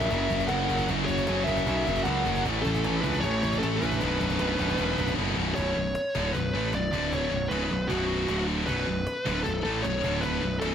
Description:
heavy metal; 154 BPM; 4/4; straight; B minor; A4 = 442 Hz
high-gain lead guitar; melody; 0.0-10.7 s; F#4 to F#5; -30 LUFS; left 1 dB; distortion, digital delay
high-gain lead guitar; second line; 0.0-5.1 s; C#4 to A#4; -36 LUFS; right 5 dB; distortion
heavy high-gain guitar; riff; 0.0-10.7 s; B1 to A3; -32 LUFS; left 13 dB; distortion
scooped high-gain guitar; riff; 0.0-10.7 s; B1 to A3; -33 LUFS; right 11 dB; distortion
sludgy distorted guitar; riff; 0.0-5.6 s; B1 to A3; -33 LUFS; equal; overdrive
fuzz picked electric bass; bass; 0.0-10.7 s; B0 to C#2; -30 LUFS; equal; overdrive
cajon; drums; 0.0-10.7 s; -39 LUFS; equal
little or no reverb; -24 LUFS; side -8 dB against mid
0.0-5.6 A section; 5.6-10.7 B section
kick and snare drop out 5.2-5.6
0.0 F#; 2.5 A; 4.0 Bm; 6.9 D5; 7.3 B5; 8.3 D5; 8.7 Bm; 10.0 D5

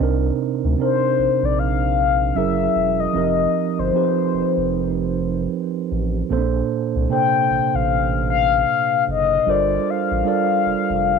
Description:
R&B; 76 BPM; 4/4; swing 62% on 16ths; C dorian; A4 = 440 Hz
mellow tine electric piano; accompaniment; 0.0-11.2 s; Bb2 to D5; -21 LUFS; right 10 dB; medium stereo tremolo
round analog bass; bass; 0.0-11.2 s; E1 to D2; -24 LUFS; equal; tube saturation
mellow horn-like synth lead; melody; 0.8-11.2 s; C5 to G5; -19 LUFS; left 12 dB; chorus
light reverb, digital ambience; 1960s-style stereo with parts hard left and right; -17 LUFS; side -6 dB against mid
0.0-11.2 A section
0.0 Cm9; 2.4 F#9; 3.1 F9sus4; 6.3 Bbmaj9; 9.5 Gm11

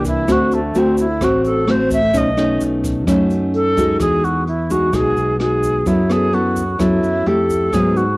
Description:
bossa nova; 129 BPM; 4/4; straight; E major from 4.0 s; A4 = 440 Hz
bright reedy alto flute; melody; 0.0-8.2 s; A3 to E5; -19 LUFS; equal; cassette tape
nylon-string guitar; accompaniment; 0.0-8.2 s; G#2 to A4; -16 LUFS; equal; cassette tape
modern bright fingered electric bass; bass; 0.0-8.2 s; A1 to G#2; -23 LUFS; equal
jazz brush drum kit; drums; 0.0-8.1 s; hi-hat, kick drum, rim click; -28 LUFS; equal; cassette tape
egg shaker; percussion; 0.0-8.2 s; -38 LUFS; right 3 dB
light reverb; home recording on cassette; -14 LUFS; side -23 dB against mid
0.0-4.0 A section; 4.0-8.2 B section
alto flute solo 0.0-4.0
0.3 D7; 2.1 B9; 4.0 Emaj9; 5.9 B7sus4/F#; 7.3 Fmaj9

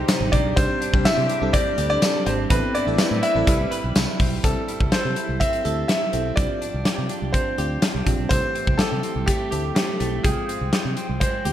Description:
1980s-style pop; 124 BPM; 4/4; straight; C major; A4 = 440 Hz
FM electric piano with soft pad layer; accompaniment; 0.0-11.5 s; Ab3 to G5; -30 LUFS; left 1 dB; chorus
phased analog pad; sustained chords; 0.0-4.4 s; C3 to B4; -31 LUFS; right 1 dB; phaser, chorus
direct-recorded clean electric guitar; riff; 0.0-11.5 s; E3 to B4; -32 LUFS; right 4 dB; lush chorus
fingered electric bass; bass; 0.0-11.5 s; Ab1 to C3; -26 LUFS; equal
big rock drum kit; drums; 0.1-11.5 s; hi-hat, kick drum, snare drum, tambourine; -22 LUFS; equal; gated reverb
clear concert grand piano; melody; 0.3-11.5 s; G4 to E5; -25 LUFS; equal; digital delay
marimba with medium mallets; second line; 0.3-3.9 s; B3 to E4; -33 LUFS; left 2 dB; digital delay
moderate plate reverb, RT60 1.8 s; bright 1980s-style digital production; -19 LUFS; side -11 dB against mid
0.0-4.4 A section; 4.4-11.5 B section
0.0 Abmaj7; 0.6 Csus2; 2.5 Amadd9; 3.5 Cmaj7; 4.4 C6; 6.4 G7sus4/C; 8.3 C6; 10.2 Fmadd9/C

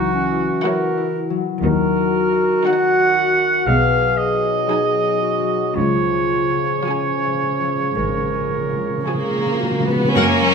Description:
classical, slow romantic movement for symphony orchestra; 54-61 BPM; 4/4; rubato; A4 = 440 Hz
warm clarinet; second line; 0.0-10.1 s; C#4 to A#4; -23 LUFS; equal
mellow French horn section; sustained chords; 0.0-9.8 s; D#3 to G#4; -26 LUFS; left 1 dB
concert harp; arpeggios; 0.0-10.5 s; F#2 to G#4; -25 LUFS; left 8 dB
clear trumpet; stabs; 0.0-9.6 s; F#4 to F#5; -20 LUFS; right 3 dB
rich studio cello section; bass; 0.0-10.5 s; G#2 to A#3; -25 LUFS; right 1 dB
rich studio double bass section; bass; 0.0-10.2 s; G#1 to F#2; -25 LUFS; right 1 dB
rich studio violin section; melody; 0.6-10.2 s; F#5 to G#5; -29 LUFS; right 1 dB
rich studio viola section; accompaniment; 0.6-10.2 s; E#3 to A#4; -26 LUFS; equal
rich studio violin section; second line; 0.7-10.5 s; A#3 to G#4; -21 LUFS; equal
timpani; percussion; 5.8-10.1 s; C#3; -25 LUFS; right 1 dB
wet stone room reverb, RT60 1.1 s; -16 LUFS; side -6 dB against mid
0.0-10.1 A section
timpani fill 5.8-10.1
0.0 F#7/C#; 1.6 D#m; 3.7 G#m7/B; 5.8 C#

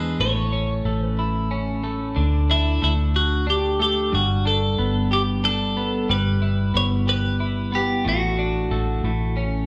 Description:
pop; 61 BPM (dotted quarters); 6/8; straight; D major; A4 = 440 Hz
twelve-string electric guitar; melody; 0.0-9.3 s; E4 to C#5; -26 LUFS; equal
twelve-string electric guitar; accompaniment; 0.0-9.7 s; E2 to G4; -27 LUFS; equal
vintage muted fingered electric bass; bass; 0.0-9.7 s; G1 to E2; -26 LUFS; equal
wet large studio reverb, RT60 1.1 s; band playing live in one room; -22 LUFS; mono
0.0-9.7 A section
0.2 A; 2.2 D5; 4.1 G; 6.1 Em/G; 8.1 D/A; 9.0 A

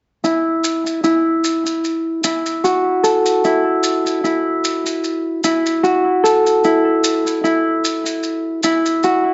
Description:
trip hop; 75 BPM; 4/4; swing 55% on 16ths; A4 = 439 Hz
Celtic harp; arpeggios; 0.2-9.3 s; E4 to A4; -17 LUFS; equal; vintage 12-bit sampler grit, low-pass filter, digital delay
maracas; percussion; 0.2-9.2 s; -27 LUFS; equal
light reverb, studio reverb; nothing above 7.7 kHz; -17 LUFS; mono
0.2-9.3 A section
filter sweep on harp 0.2-9.3
0.2 Esus24

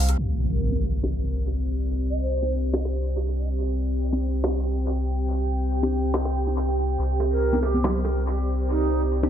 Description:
deep dubstep; 141 BPM; 4/4; swing 54% on 16ths, half-time; C minor; A4 = 440 Hz
deep dark ambient pad; sustained chords; 0.0-9.3 s; C4 to G5; -29 LUFS; equal; chorus, built-in reverb
soft dub sub bass; bass; 0.0-9.3 s; C2; -25 LUFS; equal
deep house drum kit; drums; 0.1-9.2 s; hi-hat, snare drum; -31 LUFS; equal; low-pass filter on snare, low-pass filter on hats, dub echo
impact; sound effects; 0.2-1.9 s; -28 LUFS; equal
mellow long shakuhachi; melody; 0.5-2.5, 7.3-9.0 s; Eb4 to Eb5; -32 LUFS; right 1 dB; dub echo
filtered dub chord stab; stabs; 0.7-9.3 s; C4 to G4; -32 LUFS; left 3 dB
bongos and congas; percussion; 7.2-9.3 s; -30 LUFS; right 2 dB; dub echo
light reverb, digital ambience; echo-heavy mix, low-pass filter; -22 LUFS; side -9 dB against mid
0.2-9.3 A section
impact 0.2-1.9; filter sweep 0.2-9.3
0.2 Csus2

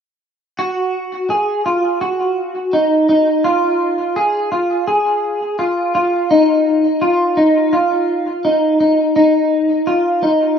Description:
dream pop; 84 BPM; 4/4; straight; A4 = 440 Hz
electric guitar at the edge of break-up; solo; 0.6-10.6 s; Eb4 to Ab4; -13 LUFS; equal; ensemble chorus, digital delay
wet studio reverb, RT60 0.5 s; rough home demo mix; -13 LUFS; side -7 dB against mid
0.6-10.6 A section

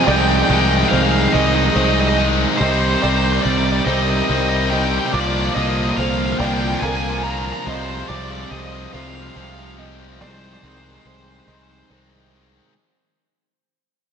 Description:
post-rock; 47 BPM (dotted quarters); 6/8; straight; A4 = 441 Hz
cranked stack guitar; melody; 0.0-11.9 s; C5 to Bb5; -23 LUFS; right 2 dB; overdrive, tape echo
muted studio string section; sustained chords; 0.0-12.7 s; D3 to Bb4; -29 LUFS; left 2 dB
felt-muted upright piano; arpeggios; 0.0-12.7 s; Bb4 to D6; -28 LUFS; right 3 dB; tape echo
distorted electric guitar; riff; 0.0-12.7 s; Bb2 to Eb4; -22 LUFS; left 10 dB; overdrive
distorted electric guitar; riff; 0.0-12.7 s; F2 to C4; -23 LUFS; right 9 dB; overdrive
fuzz picked electric bass; bass; 0.1-12.6 s; C2; -22 LUFS; equal; overdrive
wet lush hall reverb, RT60 2.0 s; dreamy mix soaked in reverb; -15 LUFS; side -7 dB against mid
0.0-12.7 A section
fade-out 0.0-12.7
0.0 Ab6/C; 2.6 Cm7; 5.1 Bb/C; 7.7 Ab6/C

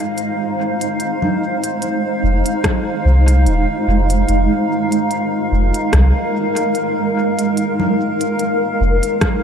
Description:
ambient dub; 73 BPM; 4/4; swing 55% on 16ths; F minor; A4 = 442 Hz
granular cloud pad; sustained chords; 0.0-9.4 s; Ab3 to F5; -17 LUFS; right 1 dB; built-in reverb
organic electronic drum kit; drums; 0.2-9.4 s; congas, hi-hat, rim click; -23 LUFS; equal; overdrive, dub echo
soft dub sub bass; bass; 2.2-9.0 s; Eb1 to C2; -13 LUFS; equal
electronic kick drum; drums; 2.6-9.4 s; -19 LUFS; equal; overdrive
moderate huge ambient reverb, RT60 7.4 s; dreamy mix soaked in reverb; -14 LUFS; side -7 dB against mid
0.0-9.4 A section
0.0 Fm7

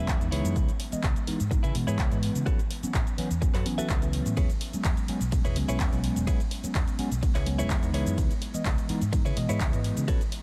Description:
filtered disco house; 126 BPM; 4/4; straight; A4 = 440 Hz
mellow tine electric piano; accompaniment; 0.0-10.2 s; E3 to D#5; -34 LUFS; equal; phaser, sidechain pumping
direct-recorded clean electric guitar; riff; 0.0-10.4 s; E4 to E5; -40 LUFS; equal; vintage 12-bit sampler grit, sidechain pumping
vintage muted fingered electric bass; bass; 0.0-10.1 s; E1 to C#3; -32 LUFS; equal; sidechain pumping
electronic kick drum; drums; 0.1-10.2 s; -30 LUFS; equal
punchy analog drum machine; drums; 0.1-10.4 s; handclaps, hi-hat, ride cymbal, shaker; -39 LUFS; equal; sidechain pumping on hats, sidechain pumping on cymbals, sidechain pumping on perc
light reverb; -27 LUFS; mono
0.0-10.4 A section
0.3 C#m7; 2.5 A69; 4.4 E6; 7.9 C#m7

